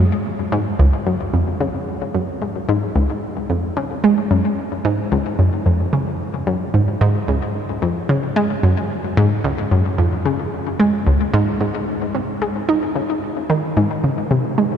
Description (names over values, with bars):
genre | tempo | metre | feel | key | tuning
ambient | 111 BPM | 4/4 | straight | Db major, Ab major from 11.6 s | A4 = 440 Hz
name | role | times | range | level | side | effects
analog pluck | solo | 0.0-14.8 s | Db2 to Eb4 | -16 LUFS | equal | chorus, vintage 12-bit sampler grit, ping-pong delay
room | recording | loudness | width
wet huge ambient reverb, RT60 7.7 s | dreamy mix soaked in reverb | -17 LUFS | side -8 dB against mid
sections
0.0-11.6 A section; 11.6-14.8 B section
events
none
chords
none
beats
0.26 | 0.80 1.34 1.88 2.42 | 2.96 3.50 4.04 4.58 | 5.12 5.66 6.20 6.74 | 7.28 7.82 8.36 8.90 | 9.44 9.98 10.53 11.06 | 11.61 12.15 12.69 13.23 | 13.77 14.31